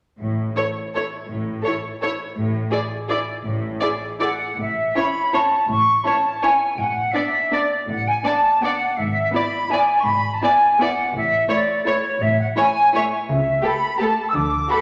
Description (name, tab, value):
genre	classical, orchestral ballroom waltz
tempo	152-182 BPM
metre	3/4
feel	rubato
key	A major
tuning	A4 = 440 Hz
part	warm studio cello section	bass	0.2-14.6 s	G#2 to D3	-31 LUFS	equal	none
part	warm studio double bass section	bass	0.2-14.6 s	G#1 to D2	-32 LUFS	equal	none
part	rich studio violin section	melody	0.6-14.8 s	A4 to D5	-28 LUFS	equal	none
part	warm studio violin section	second line	0.6-14.8 s	D4 to A4	-32 LUFS	equal	none
part	rich studio viola section	accompaniment	0.6-14.8 s	A3 to E4	-34 LUFS	equal	none
part	bright small flute group	second line	4.2-14.8 s	C#5 to E6	-21 LUFS	equal	none
room	wet recital hall reverb, RT60 1.4 s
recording	none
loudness	-20 LUFS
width	mono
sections	0.2-4.6 A section; 4.6-14.8 B section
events	none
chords	0.2 A5; 4.6 A; 6.8 Bm7/A; 9.0 E/G#; 11.1 A; 13.3 A/C#